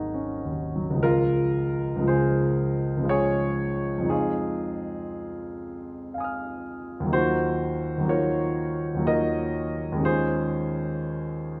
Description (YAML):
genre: classical, impressionist solo piano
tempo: 60 BPM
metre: 3/4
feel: uneven beats, rubato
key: Db major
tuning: A4 = 439 Hz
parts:
  - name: warm grand piano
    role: solo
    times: 0.0-11.6 s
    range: Ab1 to F6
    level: -26 LUFS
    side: equal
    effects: none
room: wet recital hall reverb, RT60 1.5 s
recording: nothing above 10.8 kHz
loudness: -26 LUFS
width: mono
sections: 0.0-1.0 A section; 1.0-11.6 B section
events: none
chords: 0.0 Ab9sus4; 1.0 Dbmaj7; 4.1 Fm7; 7.1 Ebm9; 10.1 Dbmaj9/Eb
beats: | 1.03 2.07 3.09 | 4.11 5.11 6.13 | 7.14 8.11 9.08 | 10.05 11.04